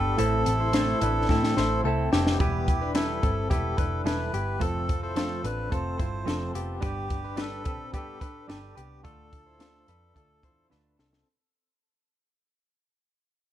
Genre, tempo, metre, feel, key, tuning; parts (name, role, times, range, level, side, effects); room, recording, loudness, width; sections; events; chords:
jangly indie pop; 108 BPM; 4/4; straight; A4 = 440 Hz
melodica; melody; 0.0-10.7 s; G4 to C5; -32 LUFS; equal; tape echo
semi-hollow electric guitar; accompaniment; 0.0-11.3 s; A2 to B4; -33 LUFS; right 6 dB
dark studio string section; sustained chords; 0.0-2.4 s; C3 to G4; -36 LUFS; left 1 dB
direct-recorded clean electric guitar; arpeggios; 0.0-11.3 s; B3 to C5; -33 LUFS; left 5 dB; tremolo
vintage muted picked electric bass; bass; 0.0-11.2 s; E1 to A2; -30 LUFS; equal
compact cocktail drum kit; drums; 0.2-11.3 s; hi-hat, kick drum, snare drum; -28 LUFS; equal
moderate studio reverb, RT60 0.6 s; dark, warm production; -24 LUFS; side -12 dB against mid
0.0-2.4 A section; 2.4-11.3 B section
drum fill 1.3-2.4, 10.7-11.3; fade-out 2.4-11.3
0.2 Am; 2.4 Em; 4.6 F; 6.8 G; 9.0 Dm